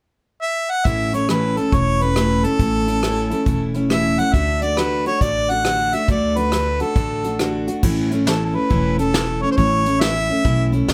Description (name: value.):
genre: honky-tonk and classic country.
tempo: 138 BPM.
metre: 4/4.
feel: swing 64% on 8ths.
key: A major.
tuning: A4 = 441 Hz.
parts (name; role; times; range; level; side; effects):
warm harmonica; melody; 0.4-10.7 s; A4 to F#5; -23 LUFS; equal; plate reverb.
picked steel-string acoustic guitar; accompaniment; 0.8-10.9 s; A2 to F#4; -23 LUFS; equal; none.
upright bass; bass; 0.9-10.9 s; E1 to D2; -26 LUFS; equal; none.
soft brush drum kit; drums; 0.9-10.9 s; crash cymbal, hi-hat, kick drum, rim click, snare drum; -25 LUFS; equal; none.
room: light reverb.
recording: none.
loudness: -19 LUFS.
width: mono.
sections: 0.8-7.8 A section; 7.8-10.9 B section.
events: none.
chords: 0.0 N.C.; 0.8 A; 4.3 D; 7.8 A.